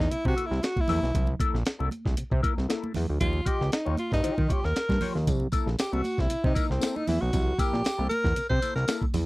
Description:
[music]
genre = funk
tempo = 116 BPM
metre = 4/4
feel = straight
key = C mixolydian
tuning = A4 = 440 Hz
[part]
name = breathy tenor saxophone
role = melody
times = 0.0-9.0 s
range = C4 to C5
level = -29 LUFS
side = equal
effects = none
[part]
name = mellow electric guitar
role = accompaniment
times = 0.0-9.2 s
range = Bb3 to Eb5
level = -33 LUFS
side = left 6 dB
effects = wah
[part]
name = fat analog bass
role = bass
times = 0.0-9.2 s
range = Bb1 to Eb3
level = -27 LUFS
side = equal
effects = none
[part]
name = breakbeat sampler-style drum kit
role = drums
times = 0.0-9.3 s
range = hi-hat, kick drum, snare drum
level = -28 LUFS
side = equal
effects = none
[part]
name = congas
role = percussion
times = 0.2-9.3 s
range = none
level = -36 LUFS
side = right 3 dB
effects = none
[part]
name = tambourine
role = percussion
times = 5.3-9.3 s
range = none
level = -43 LUFS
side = left 4 dB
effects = none
[sound]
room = little or no reverb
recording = dry, close 1970s-style studio recording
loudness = -24 LUFS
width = side -20 dB against mid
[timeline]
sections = 0.0-9.3 A section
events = tenor saxophone solo 0.0-9.3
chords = 0.0 C13; 3.2 Eb9; 5.3 C13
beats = 0.11 0.63 | 1.15 1.66 2.18 2.69 | 3.21 3.73 4.24 4.76 | 5.27 5.79 6.30 6.82 | 7.34 7.85 8.37 8.88

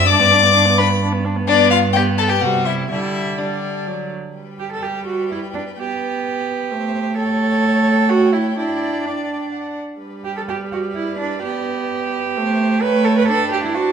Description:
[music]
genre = quick classical-period movement for string quartet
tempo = 128 BPM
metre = 3/4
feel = straight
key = G major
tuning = A4 = 440 Hz
[part]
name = warm violin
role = melody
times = 0.0-13.9 s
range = D5 to D6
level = -21 LUFS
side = left 8 dB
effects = none
[part]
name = rich violin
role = second line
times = 0.0-13.9 s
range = D4 to D5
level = -22 LUFS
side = left 4 dB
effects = none
[part]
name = warm viola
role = accompaniment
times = 0.0-13.9 s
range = F#3 to D4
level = -21 LUFS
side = right 2 dB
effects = none
[part]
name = rich cello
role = bass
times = 0.0-13.9 s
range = G2 to B4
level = -21 LUFS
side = right 4 dB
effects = none
[sound]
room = wet recital hall reverb, RT60 1.7 s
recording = minimal, uncompressed stereo recording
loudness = -16 LUFS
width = side -7 dB against mid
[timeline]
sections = 0.0-4.4 A section; 4.4-13.9 B section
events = none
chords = 0.1 G; 2.4 C; 2.9 Dsus4; 3.9 D; 4.4 G; 5.8 G/B; 6.7 Am; 7.2 A7; 8.6 Dsus4; 9.5 D; 10.0 G; 11.4 G/B; 12.4 Am; 12.8 A7; 13.3 G/D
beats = | 0.08 0.55 1.01 | 1.48 1.95 2.42 | 2.90 3.39 3.88 | 4.36 4.83 5.30 | 5.78 6.25 6.71 | 7.17 7.63 8.10 | 8.57 9.05 9.53 | 10.01 10.48 10.95 | 11.43 11.90 12.37 | 12.83 13.29 13.76

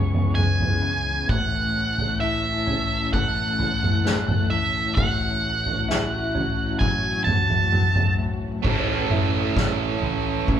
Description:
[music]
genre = post-rock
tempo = 65 BPM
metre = 4/4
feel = straight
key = A major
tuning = A4 = 440 Hz
[part]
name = octave-fuzz lead guitar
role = melody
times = 0.0-8.1 s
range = C#5 to A5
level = -25 LUFS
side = right 2 dB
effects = distortion, slapback echo
[part]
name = rich studio string section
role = sustained chords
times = 0.0-10.6 s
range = E3 to C#6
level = -36 LUFS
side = equal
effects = none
[part]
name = electric guitar through a small old amp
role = arpeggios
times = 0.0-10.6 s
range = A2 to E4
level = -30 LUFS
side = left 2 dB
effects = tremolo
[part]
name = modern bright fingered electric bass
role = bass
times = 0.0-10.6 s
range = A1 to C#2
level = -30 LUFS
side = equal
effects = none
[part]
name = soft-mallet drum kit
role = drums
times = 0.1-10.6 s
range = crash cymbal, kick drum, snare drum, toms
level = -24 LUFS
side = left 1 dB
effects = none
[part]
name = distorted electric guitar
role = riff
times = 8.6-10.6 s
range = A3 to A4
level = -24 LUFS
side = right 8 dB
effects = overdrive
[sound]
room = moderate large studio reverb, RT60 1.4 s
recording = band playing live in one room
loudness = -20 LUFS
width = side -9 dB against mid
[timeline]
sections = 0.0-8.6 A section; 8.6-10.6 B section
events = none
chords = 0.0 C#m7; 1.3 A; 5.0 F#m7/A; 8.6 A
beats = 0.37 | 1.29 2.21 3.13 4.04 | 4.96 5.88 6.80 7.72 | 8.64 9.56 10.48

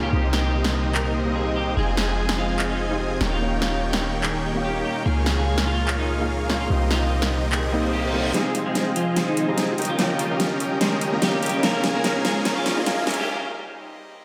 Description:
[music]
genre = future bass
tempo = 146 BPM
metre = 4/4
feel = swing 53% on 16ths, half-time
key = F minor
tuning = A4 = 439 Hz
[part]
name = clean electric guitar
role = melody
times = 0.0-13.3 s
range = Eb3 to Bb4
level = -31 LUFS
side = equal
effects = lush chorus, low-pass filter, tape echo
[part]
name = felt-muted upright piano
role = accompaniment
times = 0.0-13.3 s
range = G3 to G4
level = -32 LUFS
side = equal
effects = tape echo
[part]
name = airy breathy pad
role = sustained chords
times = 0.0-14.2 s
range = C3 to G4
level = -37 LUFS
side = equal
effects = none
[part]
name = dense compressed supersaw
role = riff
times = 0.0-13.3 s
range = Bb3 to Db6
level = -28 LUFS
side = equal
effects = low-pass filter
[part]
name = warm 808-style bass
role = bass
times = 0.0-13.3 s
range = Eb1 to Eb2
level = -28 LUFS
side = equal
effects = high-pass filter
[part]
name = big-room dance drum kit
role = drums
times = 0.3-13.2 s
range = handclaps, hi-hat, snare drum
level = -29 LUFS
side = equal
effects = none
[part]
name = reverse cymbal and riser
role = sound effects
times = 7.8-13.3 s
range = none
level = -37 LUFS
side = equal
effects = none
[sound]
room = wet lush hall reverb, RT60 1.9 s, digital ambience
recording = dreamy mix soaked in reverb, high-pass filter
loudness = -23 LUFS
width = mono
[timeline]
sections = 0.0-8.3 A section; 8.3-14.2 B section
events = reverse cymbal 7.8-8.3; build-up 8.3-14.2; drum fill 8.3-13.3; filter sweep on supersaw synth 8.3-14.2; filter sweep on clean electric guitar 8.3-14.2; break 13.3-14.2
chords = 0.1 Cm7; 1.8 Fm7; 3.2 Eb7; 5.1 Db6; 6.7 Cm7; 8.3 Fm7; 9.8 Eb7; 11.6 Db6; 13.3 Cm7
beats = | 0.12 0.54 0.95 1.36 | 1.77 2.18 2.59 3.00 | 3.41 3.82 4.23 4.64 | 5.06 5.47 5.88 6.29 | 6.70 7.11 7.52 7.93 | 8.34 8.76 9.17 9.58 | 9.99 10.40 10.81 11.22 | 11.63 12.04 12.45 12.86 | 13.28 13.69 14.10

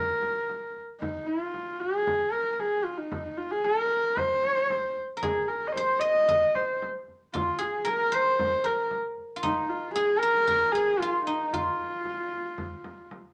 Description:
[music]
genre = mongolian traditional, Mongolian folk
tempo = 114 BPM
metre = 4/4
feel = straight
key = F yu mode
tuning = A4 = 439 Hz
[part]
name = warm horsehead fiddle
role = melody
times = 0.0-13.1 s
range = Eb4 to Eb5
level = -28 LUFS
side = equal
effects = none
[part]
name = frame drum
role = percussion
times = 0.2-13.2 s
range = none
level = -42 LUFS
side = equal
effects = none
[part]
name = guzheng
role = second line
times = 5.2-13.3 s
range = Eb4 to Eb5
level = -32 LUFS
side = equal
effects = none
[sound]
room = moderate club reverb, RT60 0.8 s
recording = none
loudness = -27 LUFS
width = mono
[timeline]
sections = 0.0-13.3 A section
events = none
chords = none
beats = 0.48 | 1.01 1.54 2.07 2.59 | 3.12 3.65 4.17 4.70 | 5.23 5.75 6.28 6.81 | 7.33 7.86 8.38 8.91 | 9.44 9.96 10.48 11.01 | 11.54 12.06 12.58 13.11

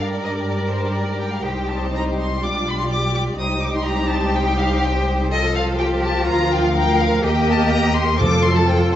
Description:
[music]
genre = quick classical-period movement for symphony orchestra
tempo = 124 BPM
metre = 4/4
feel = rubato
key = unclear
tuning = A4 = 441 Hz
[part]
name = rich chamber violin section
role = melody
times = 0.0-9.0 s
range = C5 to Eb6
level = -24 LUFS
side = left 4 dB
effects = none
[part]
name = rich chamber violin section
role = second line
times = 0.0-9.0 s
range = G4 to F5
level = -27 LUFS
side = left 3 dB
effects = none
[part]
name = warm chamber viola section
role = accompaniment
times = 0.0-9.0 s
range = F3 to G4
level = -23 LUFS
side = equal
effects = none
[part]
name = rich chamber cello section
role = bass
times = 0.0-9.0 s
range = D4 to Bb4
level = -25 LUFS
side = right 1 dB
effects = none
[part]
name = warm symphonic double bass section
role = bass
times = 0.0-9.0 s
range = B1 to G2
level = -22 LUFS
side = right 1 dB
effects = none
[part]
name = timpani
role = percussion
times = 8.2-8.9 s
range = F2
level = -23 LUFS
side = equal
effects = none
[sound]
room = moderate scoring stage reverb, RT60 1.5 s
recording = vinyl crackle, nothing above 7.8 kHz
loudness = -17 LUFS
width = side -11 dB against mid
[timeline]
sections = 0.0-9.0 A section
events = none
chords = 0.0 Gm; 1.5 Cm; 2.4 G7/B; 3.4 Cm; 5.3 F/C; 6.3 Bb/D; 7.2 Eb; 8.2 F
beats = 0.00 0.48 0.97 | 1.45 1.94 2.43 2.91 | 3.39 3.88 4.36 4.84 | 5.33 5.81 6.29 6.77 | 7.25 7.73 8.21 8.70

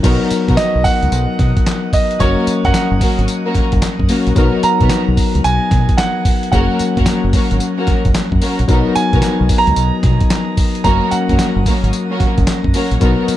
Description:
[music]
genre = R&B, new jack swing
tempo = 111 BPM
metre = 4/4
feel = swing 65% on 16ths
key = B major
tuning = A4 = 439 Hz
[part]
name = bell-like tine electric piano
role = accompaniment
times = 0.0-13.4 s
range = F#3 to A#4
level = -18 LUFS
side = left 4 dB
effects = shimmer reverb
[part]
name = warm studio string section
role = stabs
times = 0.0-13.2 s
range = A#3 to A#4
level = -22 LUFS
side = equal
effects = shimmer reverb
[part]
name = deep dub fingered electric bass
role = bass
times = 0.0-13.3 s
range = F#1 to B2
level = -17 LUFS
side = equal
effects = none
[part]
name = dusty soul sampler-style drum kit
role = drums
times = 0.0-13.4 s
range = crash cymbal, handclaps, hi-hat, kick drum, snare drum, tambourine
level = -16 LUFS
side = equal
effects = none
[part]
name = warm concert grand piano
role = melody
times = 0.6-11.6 s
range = C#5 to A#5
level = -20 LUFS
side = right 4 dB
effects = shimmer reverb
[sound]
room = light reverb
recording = dark, warm production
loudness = -12 LUFS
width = side -13 dB against mid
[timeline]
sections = 0.0-13.4 A section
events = none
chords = 0.0 Bmaj7; 2.2 F#; 4.4 Bmaj7; 6.5 F#; 8.7 Bmaj7; 10.8 F#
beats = | 0.04 0.58 1.12 1.66 | 2.20 2.74 3.28 3.82 | 4.36 4.90 5.44 5.98 | 6.53 7.07 7.61 8.15 | 8.69 9.23 9.77 10.31 | 10.85 11.39 11.93 12.47 | 13.01

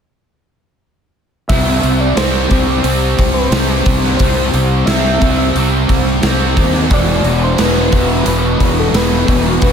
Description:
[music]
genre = rock, shoegaze and dream pop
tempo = 89 BPM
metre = 4/4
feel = straight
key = C major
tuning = A4 = 439 Hz
[part]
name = soft struck synth lead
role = melody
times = 1.5-9.7 s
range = A4 to E5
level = -20 LUFS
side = left 2 dB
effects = chorus, diffuse ambient delay
[part]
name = fuzz guitar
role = riff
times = 1.5-9.7 s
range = E2 to C4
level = -15 LUFS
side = equal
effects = distortion, analog chorus
[part]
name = fuzz fingered electric bass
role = bass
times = 1.5-9.7 s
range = E1 to Eb2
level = -17 LUFS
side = equal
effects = overdrive
[part]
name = gated 80s drum kit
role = drums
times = 1.5-9.7 s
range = hi-hat, kick drum, snare drum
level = -16 LUFS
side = equal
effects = none
[sound]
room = moderate plate reverb, RT60 2.7 s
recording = dreamy mix soaked in reverb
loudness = -11 LUFS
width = side -7 dB against mid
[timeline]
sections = 1.5-9.7 A section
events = none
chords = 1.5 C; 6.9 E5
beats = | 1.50 2.17 2.85 3.52 | 4.20 4.88 5.55 6.23 | 6.91 7.58 8.26 8.94 | 9.62

